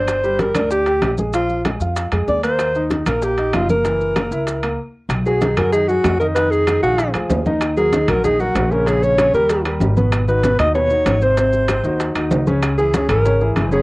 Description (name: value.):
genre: Afro-Cuban jazz.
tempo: 191 BPM.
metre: 4/4.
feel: straight.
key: unclear.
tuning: A4 = 440 Hz.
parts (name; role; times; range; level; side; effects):
breathy alto saxophone; melody; 0.0-13.8 s; F4 to D#5; -17 LUFS; equal; cassette tape.
warm grand piano; accompaniment; 0.0-13.8 s; B2 to G5; -22 LUFS; equal; none.
upright bass; bass; 0.0-13.8 s; Gb1 to F#2; -21 LUFS; equal; none.
bongos; percussion; 0.1-13.7 s; none; -29 LUFS; left 3 dB; none.
claves; percussion; 0.1-13.7 s; none; -35 LUFS; left 1 dB; none.
congas; percussion; 0.1-13.8 s; none; -25 LUFS; equal; none.
maracas; percussion; 0.1-13.8 s; none; -39 LUFS; left 2 dB; none.
timbales; percussion; 0.1-13.7 s; none; -26 LUFS; right 3 dB; none.
room: light reverb.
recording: home recording on cassette.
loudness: -15 LUFS.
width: side -22 dB against mid.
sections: 0.0-5.1 A section; 5.1-13.8 B section.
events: stop 4.8-5.1.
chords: 0.1 Gm; 1.3 Bb5; 2.6 Eb; 3.8 Gb7; 5.1 B6; 6.4 G#m13; 7.0 A#7; 7.6 D#m7; 8.9 A#m6; 9.5 D#; 10.1 G#m7; 11.4 G#7; 12.6 C#m.